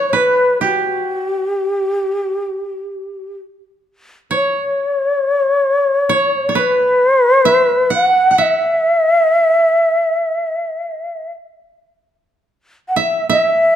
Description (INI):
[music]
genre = japanese traditional, Japanese chamber music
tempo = 60-68 BPM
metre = 4/4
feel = rubato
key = E kumoi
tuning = A4 = 441 Hz
[part]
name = breathy mellow shakuhachi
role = melody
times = 0.0-13.8 s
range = G4 to F#5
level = -14 LUFS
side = left 1 dB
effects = none
[part]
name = koto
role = second line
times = 0.0-13.8 s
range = G4 to F#5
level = -19 LUFS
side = right 4 dB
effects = none
[sound]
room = light reverb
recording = dark, warm production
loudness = -13 LUFS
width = side -10 dB against mid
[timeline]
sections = 0.0-12.3 A section; 12.3-13.8 B section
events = none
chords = none